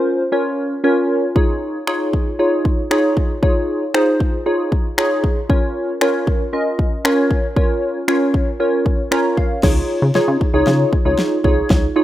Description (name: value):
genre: dance-pop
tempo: 116 BPM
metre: 4/4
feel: straight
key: Db major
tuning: A4 = 441 Hz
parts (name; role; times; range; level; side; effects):
- glassy digital keys; accompaniment; 0.0-12.0 s; Db4 to Bb5; -17 LUFS; equal; chorus, sidechain pumping
- pop drum kit; drums; 1.4-11.8 s; crash cymbal, finger snaps, kick drum, snare drum; -18 LUFS; equal; none
- plucky analog bass; bass; 9.6-11.9 s; C2 to Db3; -18 LUFS; equal; sidechain pumping
room: light reverb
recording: rough home demo mix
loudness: -15 LUFS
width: side -13 dB against mid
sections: 0.0-9.6 A section; 9.6-12.0 B section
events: synth keys fill 8.9-9.6; build-up 9.6-12.0; drum fill 9.6-12.0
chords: 0.0 Bbm; 1.4 Dbadd9; 5.5 Bbm; 9.6 Dbadd9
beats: 0.32 0.84 | 1.36 1.88 2.39 2.91 | 3.43 3.94 4.46 4.98 | 5.50 6.01 6.53 7.05 | 7.57 8.08 8.60 9.12 | 9.63 10.15 10.67 11.19 | 11.70